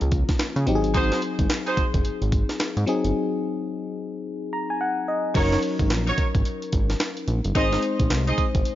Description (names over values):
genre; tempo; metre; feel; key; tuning
R&B, new jack swing; 109 BPM; 4/4; swing 62% on 16ths; unclear; A4 = 440 Hz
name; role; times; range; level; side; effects
FM electric piano; accompaniment; 0.0-8.8 s; F3 to Bb5; -26 LUFS; left 3 dB; chorus
fat analog bass; bass; 0.0-8.6 s; Gb1 to Db3; -24 LUFS; equal; none
breakbeat sampler-style drum kit; drums; 0.0-8.8 s; crash cymbal, handclaps, hi-hat, kick drum, snare drum; -24 LUFS; equal; none
mellow horn section; stabs; 0.9-1.8, 5.3-8.5 s; Eb4 to Eb5; -28 LUFS; right 3 dB; digital delay
room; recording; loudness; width
little or no reverb; nothing above 7.4 kHz; -21 LUFS; side -13 dB against mid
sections
0.0-5.4 A section; 5.4-8.8 B section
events
break 3.1-5.4; FM electric piano fill 4.2-5.4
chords
0.0 Db6; 0.7 Ab7; 5.4 Gb6; 7.6 Ab